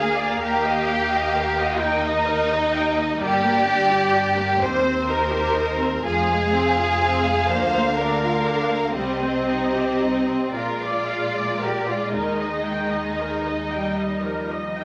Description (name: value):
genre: classical, slow romantic movement for string orchestra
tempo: 36-44 BPM (dotted quarters)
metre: 6/8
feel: rubato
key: Eb major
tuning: A4 = 439 Hz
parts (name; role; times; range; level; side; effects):
- warm symphonic violin section; melody; 0.0-14.8 s; C5 to F5; -30 LUFS; equal; none
- warm symphonic violin section; second line; 0.0-14.8 s; C4 to C5; -25 LUFS; equal; none
- rich symphonic viola section; accompaniment; 0.0-14.8 s; F3 to G5; -28 LUFS; equal; none
- rich symphonic cello section; bass; 0.0-14.8 s; D2 to G3; -32 LUFS; equal; none
- warm symphonic double bass section; bass; 0.0-14.8 s; F1 to Eb2; -36 LUFS; equal; none
room: wet large studio reverb, RT60 1.1 s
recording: none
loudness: -22 LUFS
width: mono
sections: 0.0-14.8 A section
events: none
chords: 0.4 Eb; 3.2 Gm; 4.6 Cm/Eb; 6.1 Fm; 7.5 Bb/D; 9.0 Cm; 10.6 Bb7; 12.2 Eb